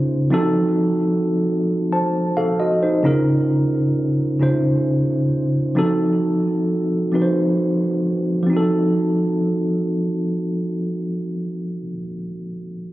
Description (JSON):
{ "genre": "R&B", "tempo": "44 BPM (dotted quarters)", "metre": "6/8", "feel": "straight", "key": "unclear", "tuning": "A4 = 441 Hz", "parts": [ { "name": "tine electric piano", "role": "solo", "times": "0.0-12.9 s", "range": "Db3 to A5", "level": "-18 LUFS", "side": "equal", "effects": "medium stereo tremolo" } ], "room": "moderate echo chamber reverb, RT60 2.1 s", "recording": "recorded on a phone in the room, club reverb", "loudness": "-17 LUFS", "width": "side -16 dB against mid", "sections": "0.0-8.5 A section; 8.5-11.2 B section", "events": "none", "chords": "0.3 F7b9; 3.0 Db6; 5.8 F7b9" }